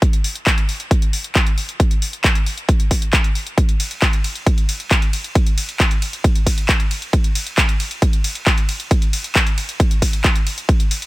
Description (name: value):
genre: trance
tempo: 135 BPM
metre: 4/4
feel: straight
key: none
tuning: none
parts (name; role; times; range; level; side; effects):
- electronic kick drum; drums; 0.0-10.8 s; none; -16 LUFS; equal; overdrive
- punchy analog drum machine; drums; 0.0-11.1 s; handclaps, hi-hat, ride cymbal; -21 LUFS; equal; none
room: little or no reverb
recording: none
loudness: -15 LUFS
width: side -20 dB against mid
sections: 0.0-11.1 A section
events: none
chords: none